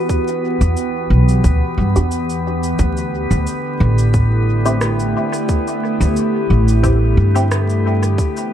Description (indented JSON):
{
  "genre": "ambient dub",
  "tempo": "89 BPM",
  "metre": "4/4",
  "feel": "swing 54% on 16ths",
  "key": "unclear",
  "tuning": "A4 = 442 Hz",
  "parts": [
    { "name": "warbly tape-like pad", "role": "sustained chords", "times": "0.0-8.5 s", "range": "D3 to G4", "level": "-20 LUFS", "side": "equal", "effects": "chorus, built-in reverb, phaser" },
    { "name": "drifting glass-harmonics texture", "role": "texture", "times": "0.0-8.5 s", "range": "B3 to B4", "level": "-25 LUFS", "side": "right 2 dB", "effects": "chorus, built-in reverb" },
    { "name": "electronic kick drum", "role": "drums", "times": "0.1-8.3 s", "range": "none", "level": "-19 LUFS", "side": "equal", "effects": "none" },
    { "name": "electronic shaker and rim click", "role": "drums", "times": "0.1-8.5 s", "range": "none", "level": "-28 LUFS", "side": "equal", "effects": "dub echo" },
    { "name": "upright bass", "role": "bass", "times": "0.6-8.2 s", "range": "A1 to G2", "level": "-15 LUFS", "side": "equal", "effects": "none" },
    { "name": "filtered dub chord stab", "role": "stabs", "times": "2.0-7.5 s", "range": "C4 to G4", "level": "-24 LUFS", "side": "equal", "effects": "phaser, dub echo" }
  ],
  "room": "little or no reverb",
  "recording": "echo-heavy mix, vinyl crackle",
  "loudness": "-14 LUFS",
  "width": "side -10 dB against mid",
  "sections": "0.0-8.5 A section",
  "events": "none",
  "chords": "0.0 Emadd9; 2.8 Dsus4"
}